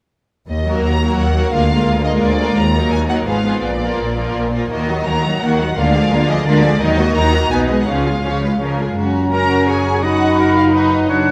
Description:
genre	classical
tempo	170 BPM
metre	3/4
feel	straight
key	Eb minor, F# major from 6.8 s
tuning	A4 = 443 Hz
part	rich symphonic violin section	melody	0.5-11.1 s	D5 to Bb5	-26 LUFS	equal	none
part	clear symphonic cello section	bass	0.5-11.3 s	D2 to Eb3	-24 LUFS	equal	none
part	rich symphonic double bass section	bass	0.5-11.3 s	F#1 to Eb2	-23 LUFS	equal	none
part	rich symphonic violin section	second line	0.7-11.3 s	C#4 to D#5	-24 LUFS	equal	none
part	rich symphonic viola section	accompaniment	0.7-11.1 s	Eb3 to A#4	-22 LUFS	equal	none
part	bright clarinet	second line	9.0-11.3 s	C#4 to D#4	-22 LUFS	equal	none
part	large flute ensemble	second line	9.0-11.3 s	A#5 to F#6	-23 LUFS	equal	none
part	mellow French horn section	sustained chords	9.0-11.3 s	F#3 to D#4	-22 LUFS	equal	none
part	clear oboe	second line	9.3-11.3 s	A#4 to D#5	-24 LUFS	equal	none
room	wet concert hall reverb, RT60 2.3 s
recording	none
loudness	-16 LUFS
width	mono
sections	0.5-9.0 A section; 9.0-11.3 B section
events	none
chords	0.5 Ebm; 1.5 Bb7/D; 2.6 Ebm; 3.3 Fdim/Ab; 3.6 Bb; 4.7 Ebm; 5.8 Bb7/D; 6.8 D#m; 7.5 G#m/B; 7.9 C#; 9.0 F#; 10.0 B/F#

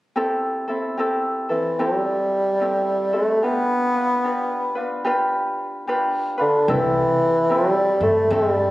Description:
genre	Hawaiian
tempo	74 BPM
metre	4/4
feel	swing 64% on 8ths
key	C major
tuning	A4 = 439 Hz
part	ukulele	accompaniment	0.2-8.7 s	C4 to B4	-23 LUFS	equal	none
part	mellow bassoon	melody	1.5-8.7 s	D3 to B3	-19 LUFS	equal	none
part	upright bass	bass	6.7-8.7 s	C2 to G2	-27 LUFS	equal	none
room	moderate concert hall reverb, RT60 1.9 s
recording	recorded on a phone in the room, club reverb, compression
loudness	-18 LUFS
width	side -17 dB against mid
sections	0.2-6.7 A section; 6.7-8.7 B section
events	none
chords	0.2 C6; 3.4 G7; 6.7 C6

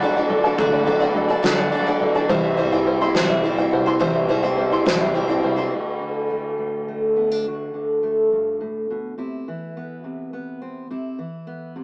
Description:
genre	indie folk with a building arrangement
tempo	70 BPM (dotted quarters)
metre	6/8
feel	straight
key	D mixolydian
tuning	A4 = 439 Hz
part	picked steel-string acoustic guitar	accompaniment	0.0-5.7 s	C3 to D5	-25 LUFS	equal	none
part	warm upright piano	accompaniment	0.0-5.7 s	C2 to G5	-27 LUFS	equal	none
part	open-back banjo	arpeggios	0.0-5.7 s	A4 to C6	-26 LUFS	equal	none
part	upright bass	bass	0.0-5.7 s	C2 to D3	-38 LUFS	equal	none
part	soft-mallet drum kit	drums	0.0-5.6 s	kick drum, ride cymbal, snare drum	-26 LUFS	equal	none
part	fingerpicked steel-string acoustic guitar	accompaniment	5.7-11.8 s	D2 to F#4	-26 LUFS	equal	none
room	light reverb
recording	rough rehearsal-room recording, warm saturation, small speaker sound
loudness	-21 LUFS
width	mono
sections	0.0-5.7 A section; 5.7-11.8 B section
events	none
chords	0.0 D; 2.3 C; 5.7 D; 9.2 Cmaj7

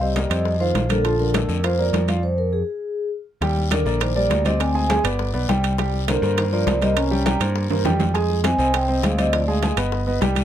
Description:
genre	Afro-Cuban jazz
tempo	203 BPM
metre	4/4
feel	straight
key	Bb major, Eb major from 3.4 s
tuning	A4 = 440 Hz
part	vibraphone with medium mallets	melody	0.0-9.8 s	Ab4 to Bb5	-24 LUFS	equal	none
part	dark trombone	second line	0.0-9.8 s	D3 to Db4	-27 LUFS	left 4 dB	none
part	warm concert grand piano	accompaniment	0.0-10.4 s	F3 to Ab5	-25 LUFS	right 2 dB	none
part	modern bright picked electric bass	bass	0.0-10.4 s	G1 to G2	-23 LUFS	equal	none
part	congas	percussion	0.0-10.4 s	none	-27 LUFS	left 2 dB	none
part	bongos	percussion	0.2-10.4 s	none	-33 LUFS	left 9 dB	none
part	guiro	percussion	0.2-10.4 s	none	-36 LUFS	left 9 dB	none
part	timbales	percussion	0.2-10.4 s	none	-28 LUFS	right 12 dB	none
room	little or no reverb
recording	close, detailed microphones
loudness	-18 LUFS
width	side -10 dB against mid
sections	0.0-3.4 A section; 3.4-10.4 B section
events	stop 2.2-3.4; drum fill 7.3-8.1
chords	0.5 F5; 1.0 Bbmaj7; 2.2 Fm; 2.8 N.C.; 3.4 Ebmaj7; 4.6 Abmaj7#11; 5.2 G; 5.8 C9sus4; 7.0 C5; 8.1 Fm9; 9.3 Dm7b5; 9.9 Gaug

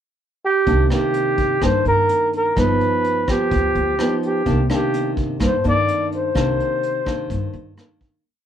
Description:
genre	bossa nova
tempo	127 BPM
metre	4/4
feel	straight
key	C minor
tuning	A4 = 440 Hz
part	breathy flugelhorn	melody	0.5-7.8 s	G4 to D5	-19 LUFS	right 1 dB	none
part	nylon-string guitar	accompaniment	0.7-8.2 s	G2 to Eb4	-22 LUFS	equal	none
part	upright bass	bass	0.7-7.8 s	G1 to G2	-22 LUFS	equal	none
part	vintage brush drum kit	drums	0.7-8.1 s	hi-hat, kick drum, rim click	-27 LUFS	equal	none
room	moderate small room reverb, RT60 0.5 s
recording	band playing live in one room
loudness	-17 LUFS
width	side -9 dB against mid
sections	0.0-0.7 pickup bar; 0.7-8.2 A section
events	fade-out 6.4-8.2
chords	0.0 N.C.; 0.7 Cm9; 2.6 G7b13; 4.5 Cm9

